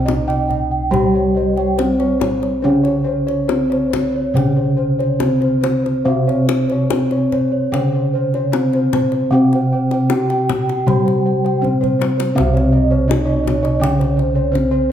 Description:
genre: Javanese gamelan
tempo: 70-83 BPM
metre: 4/4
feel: straight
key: unclear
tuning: A4 = 440 Hz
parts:
  - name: gamelan-type bronze metallophone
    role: melody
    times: 0.0-14.9 s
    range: C4 to G4-30c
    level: -20 LUFS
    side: left 1 dB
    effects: none
  - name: gamelan-type bronze metallophone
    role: accompaniment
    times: 0.0-14.9 s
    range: C3 to G3-30c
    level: -21 LUFS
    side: right 1 dB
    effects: none
  - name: gamelan-type bossed gongs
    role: arpeggios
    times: 0.0-14.9 s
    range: C5 to G5-30c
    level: -23 LUFS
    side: left 2 dB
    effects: none
  - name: gamelan-type bronze metallophone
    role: arpeggios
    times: 0.0-14.9 s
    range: C5 to G5-30c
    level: -24 LUFS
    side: right 5 dB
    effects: none
  - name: gamelan-type bossed gongs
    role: bass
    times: 0.0-14.9 s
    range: C2 to Db4+20c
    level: -21 LUFS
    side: equal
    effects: none
  - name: kendang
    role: percussion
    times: 0.1-14.7 s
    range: none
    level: -25 LUFS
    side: left 6 dB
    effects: none
room: wet recital hall reverb, RT60 1.5 s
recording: none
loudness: -14 LUFS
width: side -10 dB against mid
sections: 0.0-12.4 A section; 12.4-14.9 B section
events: drum fill 11.6-12.4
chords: none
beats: 0.06 0.91 1.77 | 2.63 3.48 4.34 5.20 | 6.06 6.90 7.73 8.54 | 9.34 10.12 10.88 11.63 | 12.36 13.09 13.81 14.54

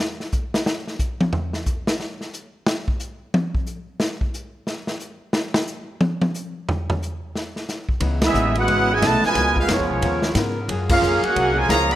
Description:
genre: jazz, big band swing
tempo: 180 BPM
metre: 4/4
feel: swing 62% on 8ths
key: unclear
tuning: A4 = 439 Hz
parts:
  - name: vintage drum kit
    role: drums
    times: 0.2-12.0 s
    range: crash cymbal, hi-hat, kick drum, ride cymbal, snare drum, toms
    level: -23 LUFS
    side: equal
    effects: none
  - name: hollow-body jazz guitar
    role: accompaniment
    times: 8.0-11.9 s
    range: C#3 to A#4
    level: -28 LUFS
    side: left 5 dB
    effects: none
  - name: dark saxophone section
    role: sustained chords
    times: 8.0-12.0 s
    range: C#3 to A#4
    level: -29 LUFS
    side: left 1 dB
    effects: none
  - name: upright bass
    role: bass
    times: 8.0-12.0 s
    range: G#1 to G#2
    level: -24 LUFS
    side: equal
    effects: none
  - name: clear trumpet section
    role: melody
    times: 8.2-12.0 s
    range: B3 to B5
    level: -20 LUFS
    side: right 1 dB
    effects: none
  - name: clear trombone section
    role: second line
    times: 8.2-12.0 s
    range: B2 to F#4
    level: -23 LUFS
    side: right 2 dB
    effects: none
room: moderate recital hall reverb, RT60 1.4 s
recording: none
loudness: -20 LUFS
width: side -13 dB against mid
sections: 0.0-8.0 A section; 8.0-12.0 B section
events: drum solo 0.0-8.0; band accent 8.2, 10.9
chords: 0.0 N.C.; 8.0 C#m9; 9.4 C#13; 10.7 F#maj9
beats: | 0.00 0.34 0.67 1.00 | 1.34 1.67 2.00 2.34 | 2.67 3.00 3.34 3.67 | 4.00 4.34 4.67 5.01 | 5.34 5.67 6.01 6.34 | 6.68 7.01 7.35 7.68 | 8.02 8.35 8.68 9.02 | 9.35 9.69 10.02 10.36 | 10.69 11.03 11.36 11.69

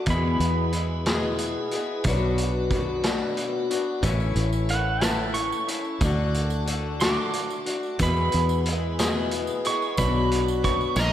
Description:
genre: folk rock and heartland rock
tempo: 60 BPM (dotted quarters)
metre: 6/8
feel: straight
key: unclear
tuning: A4 = 442 Hz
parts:
  - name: pedal steel guitar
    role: second line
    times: 0.0-1.4, 4.7-11.1 s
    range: F#5 to D6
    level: -29 LUFS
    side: right 4 dB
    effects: slapback echo
  - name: picked swing-style acoustic guitar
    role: accompaniment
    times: 0.0-11.1 s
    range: E2 to G#4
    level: -27 LUFS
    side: left 4 dB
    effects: slapback echo
  - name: tonewheel organ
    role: sustained chords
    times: 0.0-11.1 s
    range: D3 to B4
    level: -37 LUFS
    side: right 2 dB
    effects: slow rotary speaker, overdrive
  - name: fingered electric bass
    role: bass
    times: 0.1-11.1 s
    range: A1 to E2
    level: -26 LUFS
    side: right 1 dB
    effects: none
  - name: vintage drum kit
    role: drums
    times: 0.1-11.1 s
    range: hi-hat, kick drum, snare drum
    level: -28 LUFS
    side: right 1 dB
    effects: none
  - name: tambourine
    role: percussion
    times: 4.0-11.1 s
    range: none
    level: -42 LUFS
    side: right 6 dB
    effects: none
  - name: nasal lead guitar with a parked wah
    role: melody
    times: 11.0-11.1 s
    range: D#5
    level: -25 LUFS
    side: equal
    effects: overdrive
room: moderate lush hall reverb, RT60 2.6 s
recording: big arena sound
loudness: -22 LUFS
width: side -11 dB against mid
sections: 0.0-11.1 A section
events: pedal steel guitar solo 0.0-11.1; drum fill 11.0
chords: 0.1 E; 2.1 Bm; 4.0 A; 6.0 D; 8.0 E; 10.0 Bm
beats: | 0.07 1.06 | 2.05 3.05 | 4.04 5.03 | 6.02 7.01 | 8.00 8.99 | 9.98 10.96

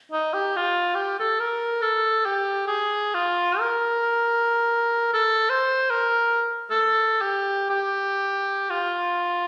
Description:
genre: classical, free, expressive piece for unaccompanied cor anglais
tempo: 71 BPM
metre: 3/4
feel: uneven beats, rubato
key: unclear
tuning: A4 = 441 Hz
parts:
  - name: warm cor anglais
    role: solo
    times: 0.1-9.5 s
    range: Eb4 to C5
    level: -23 LUFS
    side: equal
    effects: none
room: moderate recital hall reverb, RT60 1.6 s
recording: recorded on a phone in the room, studio reverb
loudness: -23 LUFS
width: mono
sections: 0.1-9.5 A section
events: none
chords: none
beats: | 0.11 0.96 1.80 | 2.67 3.60 4.39 | 5.14 5.90 6.72 | 7.69 8.70

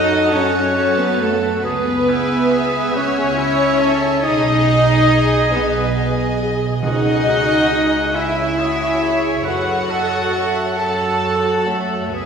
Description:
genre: cinematic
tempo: 46 BPM (dotted quarters)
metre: 6/8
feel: rubato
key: C# minor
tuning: A4 = 440 Hz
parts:
  - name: rich studio violin section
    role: melody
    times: 0.0-12.3 s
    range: A4 to A5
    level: -24 LUFS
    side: left 2 dB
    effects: none
  - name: mellow hollow silver concert flute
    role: second line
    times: 0.0-12.3 s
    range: A4 to A5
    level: -24 LUFS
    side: left 1 dB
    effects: none
  - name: mellow oboe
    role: second line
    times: 0.0-12.3 s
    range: E4 to C#5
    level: -24 LUFS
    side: right 1 dB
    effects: none
  - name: warm symphonic violin section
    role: second line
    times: 0.0-12.3 s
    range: C#5 to A5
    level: -28 LUFS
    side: left 2 dB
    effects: none
  - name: dark symphonic viola section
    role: accompaniment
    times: 0.0-12.3 s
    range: E4 to E5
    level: -24 LUFS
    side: right 1 dB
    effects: none
  - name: mellow French horn section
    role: sustained chords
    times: 0.0-12.3 s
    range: A3 to A4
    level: -23 LUFS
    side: left 2 dB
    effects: none
  - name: warm symphonic cello section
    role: bass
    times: 0.0-12.3 s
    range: A3 to A4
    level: -22 LUFS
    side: right 2 dB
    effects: none
  - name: warm symphonic double bass section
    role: bass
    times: 0.0-12.3 s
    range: B1 to F#2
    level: -23 LUFS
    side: right 3 dB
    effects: none
  - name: timpani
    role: percussion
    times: 6.8-8.1 s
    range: C#3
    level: -29 LUFS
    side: equal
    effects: none
room: wet scoring stage reverb, RT60 1.9 s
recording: recorded in a church or concert hall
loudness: -15 LUFS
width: side -6 dB against mid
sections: 0.0-12.3 A section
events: none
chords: 0.0 F#m; 1.6 C#m; 4.2 G#m/B; 6.8 C#madd9; 9.5 F#m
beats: 0.32 | 1.64 2.94 | 4.24 5.53 | 6.83 8.15 | 9.46 10.78 | 12.13

